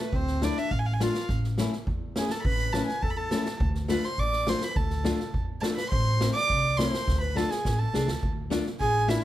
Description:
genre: klezmer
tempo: 104 BPM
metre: 2/4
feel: straight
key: D dorian sharp4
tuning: A4 = 441 Hz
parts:
  - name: warm violin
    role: melody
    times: 0.0-9.2 s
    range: B4 to D6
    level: -30 LUFS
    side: right 3 dB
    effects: none
  - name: warm clarinet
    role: second line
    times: 0.0-9.2 s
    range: A3 to D5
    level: -34 LUFS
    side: left 3 dB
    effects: none
  - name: upright bass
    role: bass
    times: 0.1-9.1 s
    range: A1 to E2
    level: -29 LUFS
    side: equal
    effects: none
  - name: street-band drum kit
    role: drums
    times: 0.1-9.2 s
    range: kick drum, snare drum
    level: -31 LUFS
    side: right 1 dB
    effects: none
  - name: nylon-string guitar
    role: accompaniment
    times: 0.4-9.2 s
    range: A3 to G#4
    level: -30 LUFS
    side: left 3 dB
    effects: none
room: light reverb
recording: none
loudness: -24 LUFS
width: side -13 dB against mid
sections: 0.0-8.2 A section; 8.2-9.2 B section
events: violin solo 0.0-8.2; drum fill 7.1-8.2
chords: 0.0 Dm; 1.3 A; 3.6 Dm; 5.9 Am; 7.1 Dm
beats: | 0.13 0.71 | 1.29 1.87 | 2.45 3.03 | 3.61 4.19 | 4.76 5.34 | 5.92 6.50 | 7.07 7.65 | 8.22 8.80

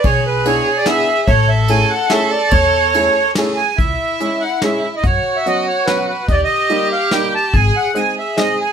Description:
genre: musette waltz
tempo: 144 BPM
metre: 3/4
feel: straight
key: A major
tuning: A4 = 439 Hz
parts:
  - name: accordion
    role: melody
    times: 0.0-8.7 s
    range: B4 to A5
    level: -16 LUFS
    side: right 2 dB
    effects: light tremolo tuning
  - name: warm violin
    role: second line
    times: 0.0-8.7 s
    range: E4 to A4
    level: -21 LUFS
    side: right 2 dB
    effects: none
  - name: upright bass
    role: bass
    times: 0.0-7.7 s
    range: G#1 to F#2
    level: -18 LUFS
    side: left 2 dB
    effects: none
  - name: soft brush drum kit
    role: drums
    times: 0.0-8.5 s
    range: hi-hat, kick drum, ride cymbal, snare drum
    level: -21 LUFS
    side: left 1 dB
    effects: none
  - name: bright upright piano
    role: accompaniment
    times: 0.5-8.6 s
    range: F#3 to G#4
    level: -20 LUFS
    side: equal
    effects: none
room: little or no reverb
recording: close, detailed microphones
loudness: -13 LUFS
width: side -7 dB against mid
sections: 0.0-3.8 A section; 3.8-8.7 B section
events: none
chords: 0.0 E7; 1.3 Amaj7; 3.8 C#m; 5.0 F#sus4; 6.3 D#; 7.5 G#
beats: | 0.04 0.45 0.87 | 1.28 1.69 2.11 | 2.52 2.94 3.36 | 3.78 4.20 4.62 | 5.04 5.46 5.87 | 6.29 6.70 7.12 | 7.53 7.95 8.37

